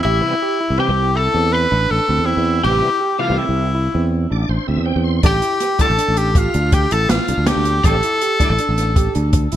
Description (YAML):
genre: progressive instrumental, band music in an uneven meter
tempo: 162 BPM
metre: 7/4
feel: straight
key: A minor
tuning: A4 = 440 Hz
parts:
  - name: clear tenor saxophone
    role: melody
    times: 0.0-9.3 s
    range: E4 to B4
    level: -19 LUFS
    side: left 1 dB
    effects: ping-pong delay
  - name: clean electric guitar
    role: second line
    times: 0.0-9.3 s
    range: E5 to B5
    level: -27 LUFS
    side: left 5 dB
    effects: analog chorus
  - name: overdriven tine electric piano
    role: arpeggios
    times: 0.0-9.6 s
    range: C4 to G4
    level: -24 LUFS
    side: right 6 dB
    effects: none
  - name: sustaining fretless electric bass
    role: bass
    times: 0.0-9.6 s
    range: A1 to E2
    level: -18 LUFS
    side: equal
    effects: none
  - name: bright tonewheel organ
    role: accompaniment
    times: 0.2-8.5 s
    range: C3 to C6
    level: -26 LUFS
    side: equal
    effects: chorus vibrato, fast rotary speaker
  - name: open jazz drum kit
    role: drums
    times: 5.2-9.6 s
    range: hi-hat, kick drum, snare drum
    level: -18 LUFS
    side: equal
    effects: gated reverb
room: light reverb, small room ambience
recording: bright 1980s-style digital production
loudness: -14 LUFS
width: side -11 dB against mid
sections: 0.0-9.6 A section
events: tonewheel organ fill 4.1-5.2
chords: 0.0 Am7; 5.2 Gsus2/A